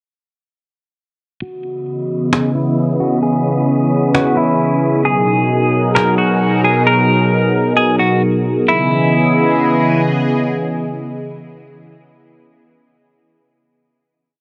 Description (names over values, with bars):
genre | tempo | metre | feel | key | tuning
hip hop, atmospheric cloud-rap | 132 BPM | 4/4 | half-time | C# dorian | A4 = 440 Hz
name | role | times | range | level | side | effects
clean electric guitar | melody | 1.4-10.0 s | E4 to A#4 | -20 LUFS | equal | low-pass filter, tape echo
sweeping resonant pad | sustained chords | 1.4-11.9 s | B2 to D#5 | -17 LUFS | equal | chorus, low-pass filter
wind-like tuned noise texture | texture | 1.9-6.8 s | B3 to F#5 | -30 LUFS | equal | built-in reverb
cajon | drums | 2.3-6.1 s | none | -22 LUFS | equal | none
room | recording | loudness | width
light reverb | dark, warm production | -15 LUFS | mono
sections
1.4-8.7 breakdown; 8.7-12.3 final chord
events
filter sweep 1.4-8.7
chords
1.4 C#m9; 5.0 G#m9; 8.7 C#m9